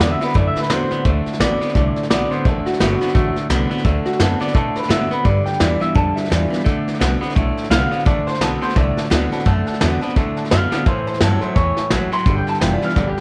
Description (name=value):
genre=rockabilly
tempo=171 BPM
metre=4/4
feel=swing 59% on 8ths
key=D mixolydian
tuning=A4 = 440 Hz
part: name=electric guitar through a small old amp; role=melody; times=0.0-13.2 s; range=F#4 to C6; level=-25 LUFS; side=equal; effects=tape echo
part: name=picked steel-string acoustic guitar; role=accompaniment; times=0.0-13.2 s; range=A2 to F#4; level=-30 LUFS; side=equal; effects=none
part: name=twangy electric guitar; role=riff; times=0.0-13.2 s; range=G2 to B3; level=-24 LUFS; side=equal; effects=none
part: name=upright bass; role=bass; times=0.0-13.2 s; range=F1 to B2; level=-24 LUFS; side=equal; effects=none
part: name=soft brush drum kit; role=drums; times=0.0-13.2 s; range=hi-hat, kick drum, snare drum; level=-22 LUFS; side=equal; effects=none
part: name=tack piano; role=accompaniment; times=8.1-13.2 s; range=C#5 to B5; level=-35 LUFS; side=equal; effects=none
room=light reverb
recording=none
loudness=-18 LUFS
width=mono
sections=0.0-13.2 A section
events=clean electric guitar solo 0.0-13.2; drum fill 10.7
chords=0.0 D7; 5.3 G7; 6.7 D7; 10.9 A7; 12.3 G7